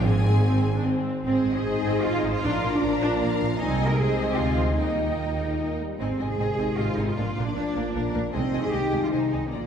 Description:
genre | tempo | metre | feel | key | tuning
cinematic, heroic adventure film score | 152 BPM | 3/4 | straight | Ab lydian | A4 = 440 Hz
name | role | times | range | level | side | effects
warm symphonic violin section | melody | 0.0-9.7 s | Ab4 to Ab5 | -39 LUFS | left 5 dB | none
rich symphonic violin section | second line | 0.0-9.6 s | Ab4 to Bb5 | -35 LUFS | left 2 dB | none
rich symphonic viola section | accompaniment | 0.0-9.6 s | Eb3 to Ab4 | -31 LUFS | left 1 dB | none
mellow tuba | bass | 0.0-1.1 s | Ab1 | -30 LUFS | right 2 dB | none
rich symphonic cello section | bass | 0.0-9.7 s | Ab2 to Bb4 | -28 LUFS | right 2 dB | none
rich symphonic double bass section | bass | 0.0-9.6 s | Ab1 to Eb2 | -27 LUFS | right 1 dB | none
mellow French horn section | sustained chords | 1.2-9.7 s | G3 to Eb4 | -31 LUFS | left 3 dB | none
dark trombone section | sustained chords | 1.3-9.7 s | Ab2 to Eb4 | -32 LUFS | right 1 dB | none
room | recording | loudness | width
wet scoring stage reverb, RT60 1.8 s | heard from further back in the room | -22 LUFS | side -8 dB against mid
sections
0.0-1.3 A section; 1.3-9.7 B section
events
none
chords
0.0 Ab; 2.4 Bb; 3.6 Ab/C; 4.8 Eb; 6.0 Ab; 7.2 Bb; 8.3 Ab/C

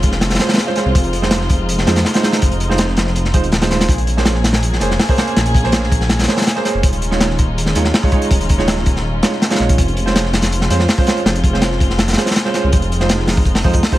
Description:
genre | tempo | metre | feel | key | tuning
drum and bass, jungle | 163 BPM | 4/4 | straight | Bb minor | A4 = 439 Hz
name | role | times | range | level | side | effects
warm chamber string section | sustained chords | 0.0-14.0 s | Ab3 to Ab4 | -24 LUFS | left 2 dB | none
dark detuned saw bass | bass | 0.0-13.8 s | Eb1 to F2 | -18 LUFS | equal | tube saturation
crunchy breakbeat drum kit | drums | 0.0-14.0 s | hi-hat, kick drum, snare drum | -15 LUFS | equal | none
warm concert grand piano | stabs | 0.4-14.0 s | Ab3 to Db5 | -21 LUFS | right 4 dB | vintage 12-bit sampler grit, dub echo
room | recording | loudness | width
little or no reverb | vinyl crackle | -13 LUFS | side -15 dB against mid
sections
0.0-14.0 A section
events
none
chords
0.0 Dbmaj7/F; 0.9 Fm7; 3.9 Bbm9; 6.8 Eb9sus4; 9.8 Dbmaj7/F; 12.7 Fm7

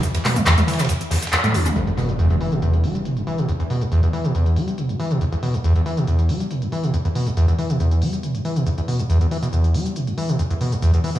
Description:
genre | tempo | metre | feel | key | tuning
driving peak-time techno | 139 BPM | 4/4 | straight | E minor | A4 = 440 Hz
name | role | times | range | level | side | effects
overdriven acid bass | riff | 0.0-11.2 s | D2 to G3 | -18 LUFS | equal | distortion, tape echo
techno drum kit | drums | 0.0-11.2 s | handclaps, hi-hat, shaker, toms | -25 LUFS | equal | low-pass filter on hats, low-pass filter on perc, low-pass filter on snare, low-pass filter on toms, low-pass filter on room, tape echo
warm soul drum kit | drums | 0.0-1.7 s | ride cymbal, snare drum | -31 LUFS | right 2 dB | high-pass filter on cymbals, high-pass filter on hats, high-pass filter on snare, high-pass filter on room
impact | sound effects | 1.8-3.5 s | none | -28 LUFS | equal | none
room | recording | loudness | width
moderate spring reverb, RT60 1.1 s | echo-heavy mix, small room reverb | -18 LUFS | side -13 dB against mid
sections
0.0-1.8 A section; 1.8-11.2 B section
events
band accent 1.3; drum fill 1.5; impact 1.8-3.5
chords
none

